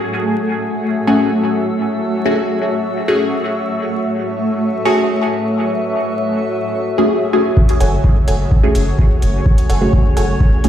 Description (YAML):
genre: dub techno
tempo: 127 BPM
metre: 4/4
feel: straight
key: F# minor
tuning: A4 = 441 Hz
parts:
  - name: granular cloud pad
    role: sustained chords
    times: 0.0-10.7 s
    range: A3 to E5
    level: -19 LUFS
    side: equal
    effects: built-in reverb, sidechain pumping
  - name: drifting glass-harmonics texture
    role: texture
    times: 0.0-10.7 s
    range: A3 to C#5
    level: -26 LUFS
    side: right 1 dB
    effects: chorus, built-in reverb, sidechain pumping
  - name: filtered dub chord stab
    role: stabs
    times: 1.1-10.7 s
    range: A3 to G#4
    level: -18 LUFS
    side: left 1 dB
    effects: phaser, sidechain pumping, dub echo
  - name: electronic kick drum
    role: drums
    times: 7.6-10.5 s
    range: none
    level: -12 LUFS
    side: equal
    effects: none
  - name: electronic hi-hat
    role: drums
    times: 7.7-10.7 s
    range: none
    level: -31 LUFS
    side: equal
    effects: none
  - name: filtered dub chord stab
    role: riff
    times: 7.8-10.2 s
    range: A4 to G#5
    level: -25 LUFS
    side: right 1 dB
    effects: chorus, sidechain pumping, dub echo
  - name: soft dub sub bass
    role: bass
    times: 7.8-10.7 s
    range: F#1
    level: -16 LUFS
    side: equal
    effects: sidechain pumping
room: moderate lush hall reverb, RT60 2.1 s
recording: played on a big sound system in a bare room, large studio reverb, vinyl crackle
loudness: -14 LUFS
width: side -10 dB against mid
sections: 0.0-7.6 A section; 7.6-10.7 B section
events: filter sweep on ambient pad 0.0-7.6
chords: 0.0 F#madd9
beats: | 0.01 0.48 0.95 1.43 | 1.90 2.37 2.85 3.32 | 3.79 4.26 4.74 5.21 | 5.68 6.15 6.62 7.10 | 7.57 8.04 8.51 8.99 | 9.46 9.93 10.40